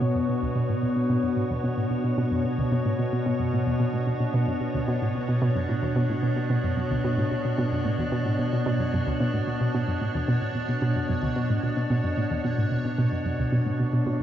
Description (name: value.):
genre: ambient, sequencer-driven space music.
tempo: 111 BPM.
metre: 4/4.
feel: straight.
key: B minor.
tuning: A4 = 439 Hz.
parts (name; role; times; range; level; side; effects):
evolving wavetable pad; sustained chords; 0.0-14.2 s; B2 to C#5; -26 LUFS; left 1 dB; chorus, built-in reverb.
analog pluck; riff; 0.0-14.2 s; D2 to B2; -26 LUFS; right 1 dB; chorus, tape echo.
bubbling stepped-filter texture; texture; 0.0-14.2 s; C#5; -45 LUFS; right 2 dB; chorus, built-in reverb.
room: wet lush hall reverb, RT60 2.5 s.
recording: dreamy mix soaked in reverb, cassette tape, nothing above 7.8 kHz.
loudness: -23 LUFS.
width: side -10 dB against mid.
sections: 0.0-14.2 A section.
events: fade-in on synth texture 0.0-14.2; filter sweep on synth arpeggio sound 0.0-14.2.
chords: 0.0 Bmadd9.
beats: | 0.01 0.55 1.09 1.64 | 2.18 2.72 3.26 3.80 | 4.34 4.88 5.42 5.96 | 6.50 7.04 7.58 8.12 | 8.66 9.20 9.74 10.28 | 10.82 11.37 11.90 12.45 | 12.99 13.53 14.07.